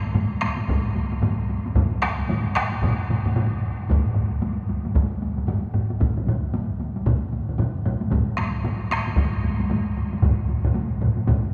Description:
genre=japanese traditional, taiko drum ensemble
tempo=113 BPM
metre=4/4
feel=swing 60% on 16ths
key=none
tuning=none
part: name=taiko ensemble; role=percussion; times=0.1-11.4 s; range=none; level=-28 LUFS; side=equal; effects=none
part: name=taiko ensemble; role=percussion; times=0.2-11.4 s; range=none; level=-31 LUFS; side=equal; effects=none
part: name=taiko ensemble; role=percussion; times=0.7-11.4 s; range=none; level=-29 LUFS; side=equal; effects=none
part: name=taiko ensemble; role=percussion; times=1.8-11.4 s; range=none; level=-30 LUFS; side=equal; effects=none
room=wet cathedral reverb, RT60 6.5 s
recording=recorded in a church or concert hall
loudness=-24 LUFS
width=mono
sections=0.0-11.5 A section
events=none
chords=none

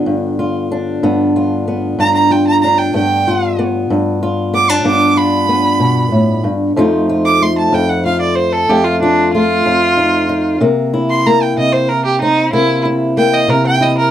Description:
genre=acoustic country blues, solo or duo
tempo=63 BPM (dotted quarters)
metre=12/8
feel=straight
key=unclear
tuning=A4 = 440 Hz
part: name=fingerpicked old ladder-braced acoustic guitar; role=accompaniment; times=0.0-14.1 s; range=F2 to F4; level=-14 LUFS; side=left 1 dB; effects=none
part: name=rich fiddle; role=melody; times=2.0-14.1 s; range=D4 to D6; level=-14 LUFS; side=right 3 dB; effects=none
room=moderate booth ambience, RT60 0.2 s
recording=dry, close 1970s-style studio recording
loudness=-11 LUFS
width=side -10 dB against mid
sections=0.0-14.1 A section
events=fiddle solo 0.0-14.1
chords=0.0 G7; 6.8 F7; 10.6 C7

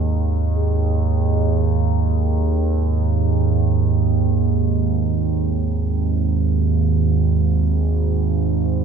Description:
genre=dark ambient drone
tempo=free time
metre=none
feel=none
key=unclear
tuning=A4 = 439 Hz
part: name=analog drone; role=drone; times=0.0-8.8 s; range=G#1 to D#2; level=-16 LUFS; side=right 3 dB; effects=chorus
part: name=bronze singing bowl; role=texture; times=0.0-8.8 s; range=G#4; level=-35 LUFS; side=left 4 dB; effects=none
room=wet cathedral reverb, RT60 5.7 s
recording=in a vast, echoing space, small room ambience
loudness=-16 LUFS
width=side -6 dB against mid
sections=0.0-8.8 A section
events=none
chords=0.0 G#5

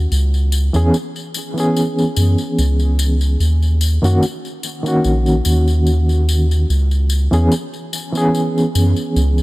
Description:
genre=trip hop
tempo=73 BPM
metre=4/4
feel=swing 53% on 16ths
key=unclear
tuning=A4 = 440 Hz
part: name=reed electric piano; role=accompaniment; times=0.0-9.4 s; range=Eb3 to Ab4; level=-18 LUFS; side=equal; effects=fast tremolo, vintage 12-bit sampler grit, tape echo
part: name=soft dub sub bass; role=bass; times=0.0-9.4 s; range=Bb1 to Gb2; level=-14 LUFS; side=equal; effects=none
part: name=tambourine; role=percussion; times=0.1-9.4 s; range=none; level=-28 LUFS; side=left 5 dB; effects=none
room=small room ambience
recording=none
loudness=-14 LUFS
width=side -20 dB against mid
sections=0.0-9.4 A section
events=none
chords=0.1 Dbm7; 3.4 Ebm7; 6.7 Dbm7

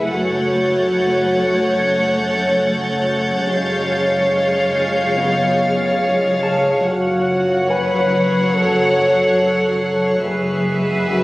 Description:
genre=cinematic, suspense film score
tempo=71 BPM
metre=4/4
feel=straight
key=F# minor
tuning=A4 = 439 Hz
part: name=warm chamber violin section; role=melody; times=0.0-11.2 s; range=E5 to F#5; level=-24 LUFS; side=equal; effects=none
part: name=warm chamber violin section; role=second line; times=0.0-11.2 s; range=B4 to C#5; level=-20 LUFS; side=equal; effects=none
part: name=dark studio viola section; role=accompaniment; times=0.0-11.2 s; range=F#3 to A3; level=-24 LUFS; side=equal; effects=none
part: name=backwards swelling texture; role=sustained chords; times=0.0-11.2 s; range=E#4 to F#5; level=-27 LUFS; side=equal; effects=built-in reverb
part: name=warm French horn section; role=sustained chords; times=0.0-11.2 s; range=B3 to B4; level=-21 LUFS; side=left 1 dB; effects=none
part: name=dark chamber cello section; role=bass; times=0.0-11.2 s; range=F#2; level=-26 LUFS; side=equal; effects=none
part: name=dark chamber double bass section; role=bass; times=0.0-11.2 s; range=F#1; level=-28 LUFS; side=equal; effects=none
part: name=concert harp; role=texture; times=0.0-11.2 s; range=G#5 to G#6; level=-32 LUFS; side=left 1 dB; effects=none
part: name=warm chamber violin section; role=texture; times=0.1-11.2 s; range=F#6 to B#6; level=-29 LUFS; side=left 1 dB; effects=none
room=moderate scoring stage reverb, RT60 1.7 s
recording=recorded on a phone in the room, studio reverb, compression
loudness=-15 LUFS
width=side -19 dB against mid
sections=0.0-11.2 A section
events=none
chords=0.1 F#m; 3.5 C#/F#; 6.9 F#m; 10.2 E/F#

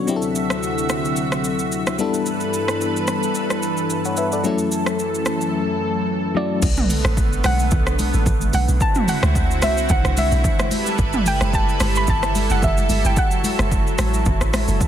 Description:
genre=amapiano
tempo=110 BPM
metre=4/4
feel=swing 55% on 16ths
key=B minor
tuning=A4 = 441 Hz
part: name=FM electric piano with tremolo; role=accompaniment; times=0.0-6.6 s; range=F#3 to F#5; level=-22 LUFS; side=left 5 dB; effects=none
part: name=lush unison pad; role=sustained chords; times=0.0-14.9 s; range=D2 to E5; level=-24 LUFS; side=right 2 dB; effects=chorus
part: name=deep house drum kit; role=drums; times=0.1-14.9 s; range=crash cymbal, hi-hat, kick drum, rim click, shaker, toms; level=-22 LUFS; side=right 1 dB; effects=overdrive
part: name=soft round pluck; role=melody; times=6.4-14.9 s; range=D5 to B5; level=-24 LUFS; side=right 1 dB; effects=chorus, digital delay
part: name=deep log drum bass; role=bass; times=6.6-14.8 s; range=F#1 to D2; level=-20 LUFS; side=equal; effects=none
part: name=congas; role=percussion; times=6.9-14.9 s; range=none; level=-28 LUFS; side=left 2 dB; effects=none
room=light reverb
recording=dense, heavily limited modern master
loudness=-17 LUFS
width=side -10 dB against mid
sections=0.0-6.6 A section; 6.6-14.9 B section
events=drop 6.6-14.9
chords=0.1 D9; 2.0 G69; 4.4 F#m7; 6.6 Bm7; 8.8 D9; 10.7 G69; 13.2 F#m7

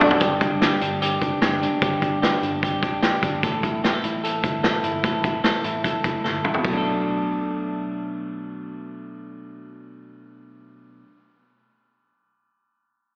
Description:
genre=jangly indie pop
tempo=149 BPM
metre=4/4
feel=straight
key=B minor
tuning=A4 = 442 Hz
part: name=clean electric guitar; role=arpeggios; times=0.0-11.2 s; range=G2 to A4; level=-27 LUFS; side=equal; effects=slapback echo
part: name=vintage muted picked electric bass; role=bass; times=0.0-11.0 s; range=E1 to B1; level=-37 LUFS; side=equal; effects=none
part: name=vintage drum kit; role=drums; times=0.0-6.7 s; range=hi-hat, kick drum, ride cymbal, snare drum, toms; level=-26 LUFS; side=equal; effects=none
room=moderate plate reverb, RT60 2.4 s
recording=live gig heard through the venue's PA, recital hall reverb, AM radio sound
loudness=-23 LUFS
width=mono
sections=0.2-6.6 A section; 6.6-9.9 B section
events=drum fill 0.0, 6.2-6.6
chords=0.2 G5; 3.4 A5; 6.6 Bm7

